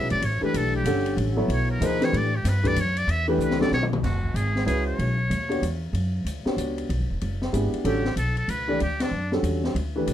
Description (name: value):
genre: modal jazz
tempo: 189 BPM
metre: 3/4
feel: swing 63% on 8ths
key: F# phrygian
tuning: A4 = 437 Hz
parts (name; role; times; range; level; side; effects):
- trumpet with metal mute; melody; 0.0-5.8, 7.9-9.3 s; D4 to E5; -28 LUFS; equal; none
- warm upright piano; accompaniment; 0.0-10.1 s; D3 to F#5; -26 LUFS; equal; none
- upright bass; bass; 0.0-10.1 s; E1 to A2; -26 LUFS; equal; none
- open jazz drum kit; drums; 0.1-10.1 s; crash cymbal, hi-hat, kick drum, ride cymbal, snare drum, toms; -32 LUFS; left 2 dB; none
room: light reverb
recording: dark, warm production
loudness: -22 LUFS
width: side -11 dB against mid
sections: 0.0-4.0 A section; 4.0-10.1 B section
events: muted trumpet solo 0.0-4.0; drum fill 3.4-4.0; band accent 9.0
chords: 0.2 A9sus4; 4.0 F#9sus4; 7.9 A9sus4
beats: | 0.23 0.54 0.86 | 1.18 1.49 1.81 | 2.13 2.45 2.76 | 3.08 3.40 3.72 | 4.03 4.35 4.67 | 4.99 5.31 5.62 | 5.94 6.26 6.58 | 6.90 7.22 7.53 | 7.85 8.17 8.49 | 8.81 9.13 9.44 | 9.76 10.08